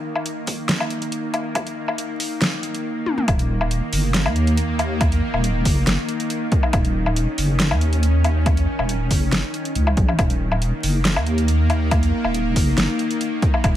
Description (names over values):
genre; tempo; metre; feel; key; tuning
deep dubstep; 139 BPM; 4/4; half-time; Eb minor; A4 = 440 Hz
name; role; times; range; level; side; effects
bowed-like drone; sustained chords; 0.0-13.8 s; Eb3 to Db4; -25 LUFS; left 1 dB; built-in reverb
deep house drum kit; drums; 0.2-13.7 s; hi-hat, snare drum, toms, woodblock; -23 LUFS; left 1 dB; overdrive
electronic kick drum; drums; 0.5-13.7 s; none; -20 LUFS; equal; overdrive, high-pass filter on kick
deep soft wobble bass; bass; 3.3-13.8 s; Eb1 to Eb2; -20 LUFS; equal; chorus
room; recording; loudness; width
light reverb, digital ambience; vinyl crackle; -18 LUFS; side -12 dB against mid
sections
0.0-3.3 A section; 3.3-13.8 B section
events
build-up 0.0-3.3; drum fill 3.1; drop 3.3-13.8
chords
0.0 Eb5